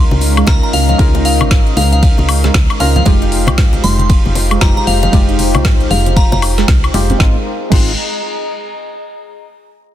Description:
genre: deep house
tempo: 116 BPM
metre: 4/4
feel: swing 61% on 16ths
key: Ab major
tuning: A4 = 441 Hz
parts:
  - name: warm analog pad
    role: sustained chords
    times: 0.0-7.4 s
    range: Ab3 to F5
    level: -26 LUFS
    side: right 1 dB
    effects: chorus, sidechain pumping
  - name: percussive organ stab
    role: stabs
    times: 0.0-7.9 s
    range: Ab3 to Bb4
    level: -21 LUFS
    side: left 1 dB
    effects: chorus, sidechain pumping, ping-pong delay
  - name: woody FM bass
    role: bass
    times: 0.0-8.0 s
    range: F1 to Db2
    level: -15 LUFS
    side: equal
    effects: sidechain pumping
  - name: warbly tape-like pad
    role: texture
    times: 0.0-9.2 s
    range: Ab3 to Bb5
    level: -23 LUFS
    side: right 1 dB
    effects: chorus, built-in reverb, phaser, sidechain pumping
  - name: congas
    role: percussion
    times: 0.1-7.2 s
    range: none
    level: -20 LUFS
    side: left 2 dB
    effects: sidechain pumping on perc
  - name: deep house drum kit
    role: drums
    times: 0.2-7.8 s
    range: crash cymbal, hi-hat, ride cymbal, snare drum, woodblock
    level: -20 LUFS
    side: left 1 dB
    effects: none
  - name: soft round pluck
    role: arpeggios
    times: 0.4-8.0 s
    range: Ab2 to Eb4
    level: -23 LUFS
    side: right 5 dB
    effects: none
  - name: glassy synth bell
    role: melody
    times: 0.5-6.4 s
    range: F5 to C6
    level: -20 LUFS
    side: left 2 dB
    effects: chorus, digital delay
  - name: electronic kick drum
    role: drums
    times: 0.5-7.8 s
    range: none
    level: -12 LUFS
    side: equal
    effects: none
room: digital ambience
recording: dense, heavily limited modern master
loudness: -9 LUFS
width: side -12 dB against mid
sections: 0.0-7.2 A section; 7.2-9.3 B section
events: drop 0.0-7.2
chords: 0.0 Db69; 3.1 Fm9; 7.2 Ab6

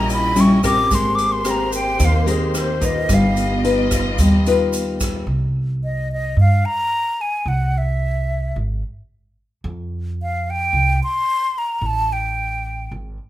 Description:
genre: bossa nova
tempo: 110 BPM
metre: 4/4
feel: straight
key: C minor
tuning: A4 = 440 Hz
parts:
  - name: breathy mellow silver concert flute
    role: melody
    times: 0.0-12.9 s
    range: Ab4 to D6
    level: -21 LUFS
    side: equal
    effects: none
  - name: nylon-string guitar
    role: accompaniment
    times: 0.0-5.3 s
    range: Bb2 to B4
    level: -18 LUFS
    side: left 2 dB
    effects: none
  - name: warm studio string section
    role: sustained chords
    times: 0.0-5.3 s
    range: Bb3 to Eb5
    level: -26 LUFS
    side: right 1 dB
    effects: none
  - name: upright bass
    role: bass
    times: 0.0-13.2 s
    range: G1 to G2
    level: -21 LUFS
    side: right 1 dB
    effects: none
  - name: swinging big-band drum kit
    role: drums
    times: 0.1-5.1 s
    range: hi-hat, kick drum, rim click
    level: -26 LUFS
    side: equal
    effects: none
  - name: tube shaker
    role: percussion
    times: 0.1-5.3 s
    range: none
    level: -31 LUFS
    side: right 5 dB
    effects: none
room: light reverb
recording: minimal, uncompressed stereo recording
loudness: -16 LUFS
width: side -14 dB against mid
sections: 0.0-5.3 A section; 5.3-13.3 B section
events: flute solo 0.0-5.3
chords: 0.0 Eb7b9; 0.9 Abmaj9; 3.1 Gaug7; 5.3 C5; 7.5 C; 9.6 Fsus2; 11.8 Gsus2/A

